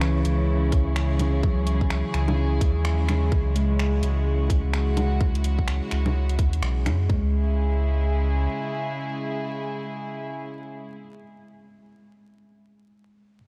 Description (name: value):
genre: future garage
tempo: 127 BPM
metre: 4/4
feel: swing 61% on 16ths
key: C# minor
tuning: A4 = 439 Hz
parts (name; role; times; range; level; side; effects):
- tine electric piano; accompaniment; 0.0-13.4 s; E3 to G#3; -35 LUFS; equal; overdrive, vintage 12-bit sampler grit, sidechain pumping, low-pass filter, analog delay
- rich chamber string section; sustained chords; 0.0-11.1 s; C#3 to G#4; -32 LUFS; equal; vintage 12-bit sampler grit, sidechain pumping
- warm sub bass; bass; 0.0-8.5 s; B1 to F#2; -25 LUFS; equal; sidechain pumping
- garage drum kit; drums; 0.0-7.0 s; bongos, finger snaps, hi-hat; -34 LUFS; equal; overdrive, studio reverb
- wind-like tuned noise texture; texture; 0.0-7.1 s; C#5; -46 LUFS; equal; none
- garage drum kit; drums; 0.7-7.2 s; kick drum, toms; -25 LUFS; equal; overdrive, studio reverb
room: little or no reverb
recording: vinyl crackle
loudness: -24 LUFS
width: mono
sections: 0.0-7.1 A section; 7.1-10.9 B section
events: filter sweep on tine electric piano 0.0-7.1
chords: 0.0 C#m